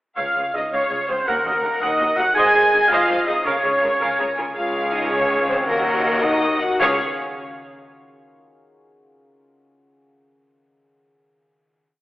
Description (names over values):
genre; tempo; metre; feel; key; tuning
cinematic, heroic adventure film score; 109 BPM (dotted quarters); 6/8; straight; Db major; A4 = 440 Hz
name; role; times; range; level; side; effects
warm symphonic violin section; melody; 0.2-7.0 s; Bb4 to Ab5; -27 LUFS; left 1 dB; none
warm clarinet; second line; 0.2-7.0 s; Gb4 to Ab5; -28 LUFS; equal; none
warm oboe; second line; 0.2-7.0 s; Bb4 to Ab5; -24 LUFS; equal; none
rich studio viola section; accompaniment; 0.2-7.0 s; Eb4 to Gb5; -25 LUFS; right 1 dB; none
warm French horn section; sustained chords; 0.2-7.0 s; Bb3 to Ab4; -26 LUFS; equal; none
concert harp; arpeggios; 0.2-7.0 s; Ab2 to Bb5; -33 LUFS; left 3 dB; none
clear trumpet section; stabs; 0.2-4.4 s; Bb4 to Ab5; -22 LUFS; right 1 dB; none
clear symphonic cello section; bass; 0.2-7.0 s; Db2 to Db3; -30 LUFS; equal; none
rich symphonic double bass section; bass; 0.2-7.0 s; Ab1 to Eb2; -37 LUFS; right 1 dB; none
warm symphonic violin section; second line; 0.7-7.0 s; Db5 to Bb5; -29 LUFS; left 1 dB; none
mellow flute section; second line; 4.6-7.0 s; F5 to Ab5; -31 LUFS; left 2 dB; none
room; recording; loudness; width
wet scoring stage reverb, RT60 1.9 s; telephone sound; -17 LUFS; side -16 dB against mid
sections
0.2-4.6 theme; 4.6-6.8 outro; 6.8-8.0 final chord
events
slowing down 4.0-6.8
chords
0.2 Db; 1.3 Ebm; 2.4 Ab; 3.4 Db6; 4.6 Db; 5.7 Ebm; 6.8 Db